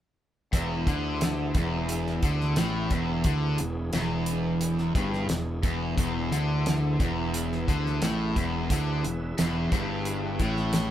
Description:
classic rock; 88 BPM; 4/4; straight; E major; A4 = 442 Hz
tonewheel organ; sustained chords; 0.5-10.9 s; B3 to E5; -38 LUFS; equal; slow rotary speaker, overdrive, chorus vibrato
crunchy overdriven guitar; riff; 0.5-10.9 s; E2 to D3; -31 LUFS; left 6 dB
sludgy distorted guitar; riff; 0.5-10.9 s; E2 to D3; -31 LUFS; right 5 dB; overdrive
fuzz fingered electric bass; bass; 0.5-10.9 s; E1 to D2; -31 LUFS; equal; overdrive
damped 70s drum kit; drums; 0.5-10.9 s; hi-hat, kick drum, snare drum; -28 LUFS; equal
light reverb; band playing live in one room; -25 LUFS; side -11 dB against mid
0.5-10.9 A section
0.5 E
| 0.53 1.21 1.89 2.57 | 3.25 3.94 4.62 5.30 | 5.98 6.66 7.34 8.02 | 8.70 9.38 10.06 10.74

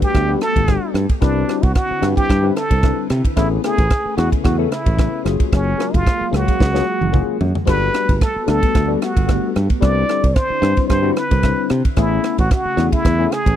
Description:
electric jazz fusion; 112 BPM; 4/4; swing 54% on 16ths; A4 = 440 Hz
trumpet with plunger mute; melody; 0.0-13.6 s; C#4 to D5; -21 LUFS; right 1 dB
barky tine electric piano; accompaniment; 0.0-13.5 s; F#3 to E#5; -23 LUFS; left 18 dB; phaser
soft string machine; sustained chords; 0.0-13.6 s; C#3 to B4; -26 LUFS; right 1 dB; ensemble chorus
tight funk drum kit; drums; 0.0-13.6 s; crash cymbal, kick drum, ride cymbal, rim click, snare drum, toms; -18 LUFS; right 1 dB
modern bright fingered electric bass; bass; 0.1-13.6 s; F#1 to C3; -19 LUFS; right 1 dB
little or no reverb; dry, close 1970s-style studio recording; -15 LUFS; side -10 dB against mid
0.0-13.6 A section
drum fill 6.6-7.7
0.0 Gmaj9; 1.2 Cmaj9; 3.4 Amaj9; 5.2 F#maj9; 7.7 Gmaj9; 9.8 Cmaj9; 12.0 Amaj9
0.14 0.68 | 1.22 1.75 2.29 2.83 | 3.37 3.91 4.44 4.98 | 5.52 6.06 6.59 7.13 | 7.67 8.21 8.74 9.28 | 9.82 10.36 10.89 11.43 | 11.97 12.51 13.04

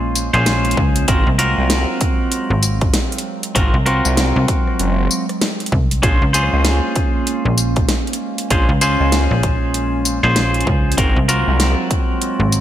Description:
glitch hop; 97 BPM; 4/4; swing 60% on 16ths; Bb minor; A4 = 440 Hz
warbly tape-like pad; sustained chords; 0.0-12.6 s; Gb3 to Db4; -25 LUFS; right 3 dB; chorus, built-in reverb, sidechain pumping
twangy electric guitar; stabs; 0.0-12.6 s; C4 to C5; -20 LUFS; equal; sidechain pumping, ping-pong delay
slap-like FM bass; bass; 0.0-12.6 s; Ab1 to Db2; -18 LUFS; equal
dubstep drum kit; drums; 0.2-12.6 s; hi-hat, rim click, snare drum, tambourine; -21 LUFS; equal; gated reverb
electronic kick drum; drums; 0.8-12.1 s; -18 LUFS; equal
phased detuned saw bass; bass; 1.1-11.8 s; Gb1 to Db2; -17 LUFS; equal; phaser
light reverb; bright 1980s-style digital production; -14 LUFS; side -12 dB against mid
0.0-12.6 A section
0.0 Bbm7; 1.1 Ab13; 6.0 Bbm7; 11.0 Ab13
0.46 | 1.08 1.70 2.32 2.94 | 3.56 4.17 4.79 5.41 | 6.03 6.65 7.27 7.88 | 8.50 9.12 9.74 10.36 | 10.98 11.60 12.21

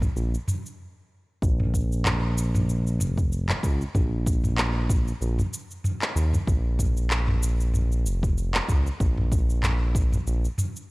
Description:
organic downtempo; 95 BPM; 4/4; swing 56% on 16ths; Bb minor pentatonic; A4 = 440 Hz
smooth synth bass; bass; 0.0-10.5 s; F1 to Eb2; -24 LUFS; equal; transformer saturation
electronic kick drum; drums; 0.0-10.1 s; -25 LUFS; equal
organic electronic drum kit; drums; 0.0-10.9 s; handclaps, shaker, toms; -28 LUFS; equal
little or no reverb; dry, gritty hardware recording, cassette tape; -22 LUFS; side -23 dB against mid
0.0-1.4 A section; 1.4-10.9 B section
stop 0.8-1.4
0.16 0.79 | 1.42 2.06 2.69 3.32 | 3.95 4.58 5.21 5.84 | 6.48 7.11 7.74 8.37 | 9.00 9.63 10.27

